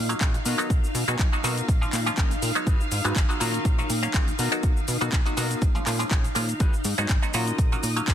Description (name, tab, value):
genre	filtered disco house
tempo	122 BPM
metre	4/4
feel	swing 54% on 16ths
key	unclear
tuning	A4 = 435 Hz
part	string machine, full ensemble	sustained chords	0.0-8.1 s	D#4 to E#5	-31 LUFS	equal	ensemble chorus, sidechain pumping
part	plucky analog bass	bass	0.0-8.1 s	G#1 to B2	-29 LUFS	equal	sidechain pumping
part	muted clav	accompaniment	0.1-8.1 s	E#3 to E#5	-29 LUFS	equal	overdrive, phaser, sidechain pumping
part	electric guitar with an envelope filter	riff	0.1-8.1 s	B3 to C#5	-35 LUFS	left 3 dB	sidechain pumping
part	house drum kit	drums	0.1-8.1 s	handclaps, hi-hat, shaker	-30 LUFS	left 1 dB	overdrive, sidechain pumping on hats, studio ambience, sidechain pumping on perc
part	electronic kick drum	drums	0.2-8.1 s	none	-23 LUFS	equal	overdrive, studio ambience
room	little or no reverb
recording	dense, heavily limited modern master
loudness	-22 LUFS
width	side -10 dB against mid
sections	0.0-8.1 A section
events	none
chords	0.5 Bmaj7; 1.7 A#m7; 2.7 G#m7; 3.4 F#maj7/A#; 4.4 Bmaj7; 5.6 A#m7; 6.6 G#m7; 7.3 F#maj7/A#